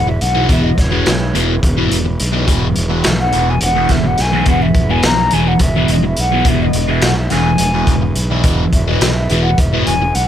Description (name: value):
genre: psychedelic rock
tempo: 211 BPM (eighths)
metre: 7/8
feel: straight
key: E major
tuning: A4 = 438 Hz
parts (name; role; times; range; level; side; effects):
- breathy mellow jazz flute; melody; 0.0-10.3 s; C#5 to A#5; -19 LUFS; left 1 dB; analog delay
- tonewheel organ; sustained chords; 0.0-10.3 s; G#3 to B4; -28 LUFS; right 5 dB; slow rotary speaker, overdrive
- fuzz fingered electric bass; bass; 0.0-10.3 s; E1 to B1; -17 LUFS; equal; overdrive
- fuzz guitar; riff; 0.1-10.1 s; E2 to E3; -17 LUFS; equal; distortion, phaser
- crunchy breakbeat drum kit; drums; 0.2-10.3 s; hi-hat, kick drum, snare drum; -17 LUFS; equal; none
room: small room ambience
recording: none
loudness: -12 LUFS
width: side -10 dB against mid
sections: 0.0-10.3 A section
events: flute solo 0.0-10.3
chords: 0.0 E